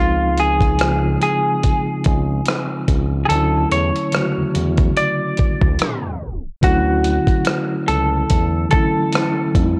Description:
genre	lo-fi hip hop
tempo	72 BPM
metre	4/4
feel	swing 56% on 16ths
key	D major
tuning	A4 = 440 Hz
part	semi-hollow electric guitar	melody	0.0-9.8 s	E#4 to D5	-23 LUFS	equal	low-pass filter
part	mellow tine electric piano	accompaniment	0.0-9.8 s	C#3 to F#4	-24 LUFS	equal	cassette tape, low-pass filter
part	smooth synth bass	bass	0.0-9.8 s	C#2 to F2	-23 LUFS	equal	transformer saturation
part	dusty soul sampler-style drum kit	drums	0.4-9.8 s	hi-hat, kick drum, rim click	-21 LUFS	equal	none
room	light reverb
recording	worn, warbling old tape, cassette tape, warbly pitch drift, tape stop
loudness	-18 LUFS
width	mono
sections	0.0-6.6 A section; 6.6-9.8 B section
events	tape stop 5.8-6.6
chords	0.0 C#maj9; 3.3 Dmaj9

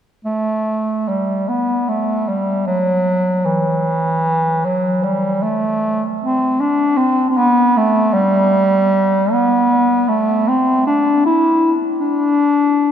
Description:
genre	classical, free, expressive piece for unaccompanied bass clarinet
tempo	77 BPM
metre	3/4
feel	rubato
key	G major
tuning	A4 = 436 Hz
part	warm bass clarinet	solo	0.2-12.9 s	E3 to E4	-14 LUFS	equal	none
room	wet cathedral reverb, RT60 4.4 s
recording	dark, warm production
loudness	-14 LUFS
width	side -9 dB against mid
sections	0.2-12.9 A section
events	none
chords	none

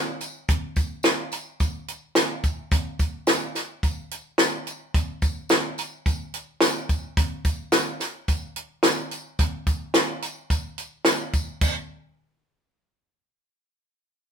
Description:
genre	indie pop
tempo	108 BPM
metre	4/4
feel	straight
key	none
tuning	none
part	compact cocktail drum kit	drums	0.2-11.7 s	crash cymbal, hi-hat, kick drum, snare drum	-22 LUFS	equal	none
part	tambourine	percussion	0.2-11.9 s	none	-35 LUFS	left 2 dB	none
room	moderate studio reverb, RT60 0.7 s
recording	band playing live in one room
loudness	-22 LUFS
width	side -7 dB against mid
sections	0.0-11.6 A section; 11.6-13.8 B section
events	none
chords	none

